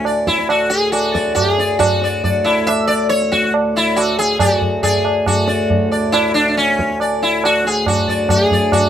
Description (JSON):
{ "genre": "indian classical, Hindustani", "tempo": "138 BPM", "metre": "4/4", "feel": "straight", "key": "D raga yaman", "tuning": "A4 = 441 Hz", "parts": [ { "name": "sitar", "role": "melody", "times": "0.0-8.9 s", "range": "C#4 to E5", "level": "-16 LUFS", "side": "left 1 dB", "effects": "none" }, { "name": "hand-pumped harmonium", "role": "drone", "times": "0.0-8.9 s", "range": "D2 to A2", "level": "-22 LUFS", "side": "left 1 dB", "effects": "none" }, { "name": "tabla", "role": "percussion", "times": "0.0-8.9 s", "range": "none", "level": "-18 LUFS", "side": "right 2 dB", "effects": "none" } ], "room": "moderate studio reverb, RT60 0.6 s", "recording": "band playing live in one room", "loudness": "-13 LUFS", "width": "side -10 dB against mid", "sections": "0.0-5.3 A section; 5.3-8.9 B section", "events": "none", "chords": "none" }